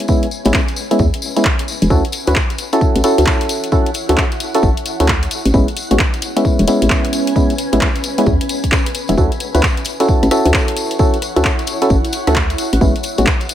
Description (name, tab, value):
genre	UK garage, two-step garage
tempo	132 BPM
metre	4/4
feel	swing 63% on 16ths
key	D lydian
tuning	A4 = 440 Hz
part	percussive organ stab	stabs	0.0-13.3 s	G#3 to B4	-17 LUFS	equal	chorus, ping-pong delay
part	house drum kit	drums	0.0-13.5 s	handclaps, hi-hat, rim click	-21 LUFS	equal	none
part	tambourine	percussion	0.0-13.5 s	none	-28 LUFS	left 4 dB	none
part	granular cloud pad	texture	0.0-13.5 s	C#4 to G#5	-26 LUFS	right 1 dB	built-in reverb, sidechain pumping
part	electronic kick drum	drums	0.1-13.4 s	none	-17 LUFS	equal	none
part	hollow knocking FM bass	bass	0.5-13.2 s	E1 to E2	-14 LUFS	equal	none
room	digital ambience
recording	none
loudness	-13 LUFS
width	side -11 dB against mid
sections	0.0-13.5 A section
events	fade-in on ambient pad 0.0-13.5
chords	0.0 Amaj9 (rootless); 1.9 Dmaj9; 5.3 Amaj9 (rootless); 9.2 Dmaj9; 12.6 Amaj9